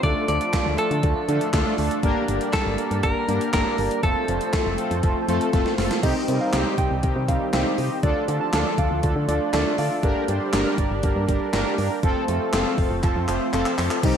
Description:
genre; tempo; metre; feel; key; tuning
synth-pop; 120 BPM; 4/4; straight; G minor; A4 = 440 Hz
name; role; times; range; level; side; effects
direct-recorded clean electric guitar; melody; 0.0-5.7 s; A4 to D5; -26 LUFS; equal; slapback echo
analog synth brass; accompaniment; 0.0-14.2 s; G3 to C5; -26 LUFS; left 2 dB; chorus
lush unison pad; sustained chords; 0.0-14.2 s; Eb3 to D4; -30 LUFS; equal; chorus
kora; arpeggios; 0.0-14.2 s; D3 to F5; -30 LUFS; right 9 dB; slapback echo
solid FM bass; bass; 0.0-14.1 s; F1 to D3; -26 LUFS; equal; none
gated 80s digital drum machine; drums; 0.0-14.2 s; crash cymbal, handclaps, hi-hat, kick drum, snare drum; -25 LUFS; equal; gated reverb, gated reverb snare, overdrive
warbly dusty pluck; second line; 6.0-9.9 s; D5 to A5; -30 LUFS; right 2 dB; chorus, slapback echo
room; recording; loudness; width
light reverb, digital ambience; none; -20 LUFS; side -8 dB against mid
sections
0.0-6.0 A section; 6.0-14.0 B section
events
drum fill 5.5-6.0, 13.0-14.0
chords
0.0 Dm; 2.0 Gm; 4.0 F; 6.0 Cm; 8.0 Dm; 10.0 Gm; 12.0 F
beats
| 0.03 0.53 1.03 1.53 | 2.03 2.53 3.03 3.53 | 4.03 4.53 5.03 5.53 | 6.03 6.53 7.03 7.53 | 8.03 8.53 9.03 9.53 | 10.03 10.53 11.03 11.53 | 12.03 12.53 13.03 13.53 | 14.03

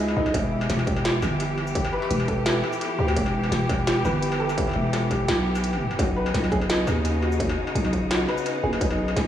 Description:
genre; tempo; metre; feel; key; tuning
half-time drum and bass; 170 BPM; 4/4; half-time; unclear; A4 = 440 Hz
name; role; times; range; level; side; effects
bright studio cello section; sustained chords; 0.0-9.3 s; C#3 to G4; -29 LUFS; left 2 dB; sidechain pumping
felt-muted upright piano; arpeggios; 0.0-9.3 s; D#4 to B4; -28 LUFS; equal; diffuse ambient delay
growling 808-style bass; bass; 0.0-9.3 s; E1 to D#2; -25 LUFS; equal; none
industrial drum kit; drums; 0.1-9.2 s; hi-hat, shaker, snare drum, struck metal; -29 LUFS; equal; none
electronic kick drum; drums; 0.3-8.9 s; none; -29 LUFS; equal; distortion
room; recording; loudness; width
moderate lush hall reverb, RT60 1.9 s; dreamy mix soaked in reverb, studio reverb; -21 LUFS; side -10 dB against mid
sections
0.0-9.3 A section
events
none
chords
0.3 Em; 6.0 Badd9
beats
| 0.34 0.69 1.05 1.40 | 1.75 2.10 2.46 2.81 | 3.16 3.52 3.87 4.22 | 4.58 4.93 5.28 5.63 | 5.99 6.34 6.69 7.05 | 7.40 7.75 8.11 8.46 | 8.81 9.16

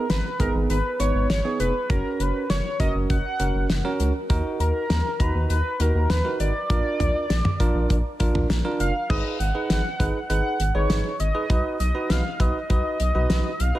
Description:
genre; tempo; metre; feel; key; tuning
synth-pop; 100 BPM; 4/4; straight; unclear; A4 = 445 Hz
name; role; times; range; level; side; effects
octave-doubled lead; melody; 0.0-13.8 s; Bb4 to Gb5; -27 LUFS; equal; chorus, tape echo
barky tine electric piano; accompaniment; 0.0-13.8 s; Cb4 to Bb5; -28 LUFS; right 3 dB; none
rubbery square bass; bass; 0.1-13.7 s; F1 to Eb2; -24 LUFS; equal; none
damped 70s drum kit; drums; 0.1-13.7 s; crash cymbal, hi-hat, kick drum, snare drum, toms; -25 LUFS; equal; gated reverb
room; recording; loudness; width
light reverb; none; -21 LUFS; side -15 dB against mid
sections
0.0-9.1 A section; 9.1-13.8 B section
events
none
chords
0.0 Abm; 1.9 Gb; 4.3 Ebm; 6.7 Bb; 9.1 Abm7; 11.5 B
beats
0.10 0.70 1.30 | 1.90 2.50 3.10 3.70 | 4.30 4.90 5.50 6.10 | 6.70 7.30 7.90 8.50 | 9.10 9.70 10.30 10.90 | 11.50 12.10 12.70 13.30

